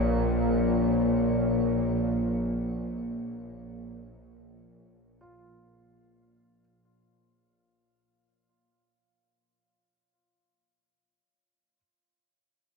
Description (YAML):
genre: dark ambient drone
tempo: free time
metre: none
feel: none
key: Bb minor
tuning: A4 = 441 Hz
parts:
  - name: bowed-like drone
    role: drone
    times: 0.0-6.7 s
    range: Bb1 to Bb2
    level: -26 LUFS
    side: left 1 dB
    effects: built-in reverb
  - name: quartz singing bowl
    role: texture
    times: 0.0-6.6 s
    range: Db5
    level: -38 LUFS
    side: left 1 dB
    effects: shimmer reverb
  - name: dark grand piano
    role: arpeggios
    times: 5.2-11.8 s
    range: F4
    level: -62 LUFS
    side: right 2 dB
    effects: none
room: wet huge ambient reverb, RT60 8.0 s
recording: none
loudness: -24 LUFS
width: side -3 dB against mid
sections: 0.0-6.6 A section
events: fade-out 0.0-6.6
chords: 0.0 Bbm